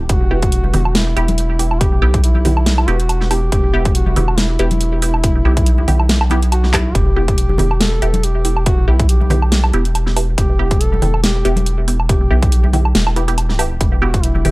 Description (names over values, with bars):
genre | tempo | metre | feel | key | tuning
deep dubstep | 140 BPM | 4/4 | swing 55% on 16ths, half-time | E minor | A4 = 440 Hz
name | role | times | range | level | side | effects
filtered dub chord stab | stabs | 0.0-14.5 s | B3 to G4 | -23 LUFS | right 2 dB | phaser, dub echo
soft dub sub bass | bass | 0.0-14.5 s | E1 to B1 | -16 LUFS | equal | none
mellow duduk | melody | 0.1-14.5 s | E4 to A4 | -24 LUFS | equal | dub echo
dubstep drum kit | drums | 0.1-14.5 s | handclaps, hi-hat, snare drum, woodblock | -19 LUFS | equal | none
electronic kick drum | drums | 0.1-14.2 s | none | -16 LUFS | equal | none
congas | percussion | 0.6-14.5 s | none | -24 LUFS | left 1 dB | none
room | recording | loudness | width
little or no reverb | dry, gritty hardware recording | -12 LUFS | side -21 dB against mid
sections
0.0-14.5 A section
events
drum fill 6.7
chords
0.0 Em